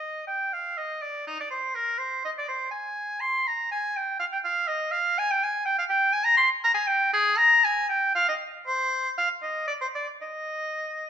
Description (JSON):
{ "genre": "classical, baroque-style fantasia for unaccompanied oboe", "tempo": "122 BPM", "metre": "3/4", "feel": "rubato", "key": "C minor, Eb major from 5.7 s", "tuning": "A4 = 439 Hz", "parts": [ { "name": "clear oboe", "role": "solo", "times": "0.0-11.1 s", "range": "Eb4 to C6", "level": "-23 LUFS", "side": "equal", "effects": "none" } ], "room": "moderate recital hall reverb, RT60 1.4 s", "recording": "minimal, uncompressed stereo recording", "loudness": "-23 LUFS", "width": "side -8 dB against mid", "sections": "0.0-11.1 A section", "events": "none", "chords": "none" }